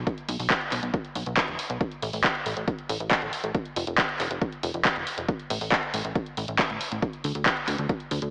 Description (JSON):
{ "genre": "uplifting trance", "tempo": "138 BPM", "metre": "4/4", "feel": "straight", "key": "unclear", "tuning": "A4 = 438 Hz", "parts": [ { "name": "plucky analog bass", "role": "bass", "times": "0.0-8.3 s", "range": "F1 to D2", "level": "-33 LUFS", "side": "equal", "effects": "sidechain pumping" }, { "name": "electronic kick drum", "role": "drums", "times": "0.1-8.0 s", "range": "none", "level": "-31 LUFS", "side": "equal", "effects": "none" }, { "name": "punchy analog drum machine", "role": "drums", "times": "0.1-8.3 s", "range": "handclaps, hi-hat", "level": "-29 LUFS", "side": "equal", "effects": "sidechain pumping on hats" } ], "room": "wet lush hall reverb, RT60 1.7 s", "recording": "dreamy mix soaked in reverb, AM radio sound", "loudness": "-27 LUFS", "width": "mono", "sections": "0.0-8.3 A section", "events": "none", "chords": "none" }